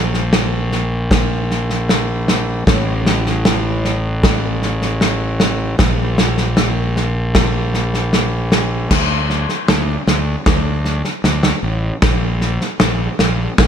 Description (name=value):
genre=post-rock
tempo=77 BPM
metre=4/4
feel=straight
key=unclear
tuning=A4 = 440 Hz
part: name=fuzz fingered electric bass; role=bass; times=0.0-13.7 s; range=A1 to D2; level=-18 LUFS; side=equal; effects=overdrive
part: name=loose indie drum kit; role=drums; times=0.1-13.7 s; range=crash cymbal, kick drum, snare drum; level=-16 LUFS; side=equal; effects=none
room=light reverb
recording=none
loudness=-14 LUFS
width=side -8 dB against mid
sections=0.0-8.9 A section; 8.9-13.7 B section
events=none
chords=none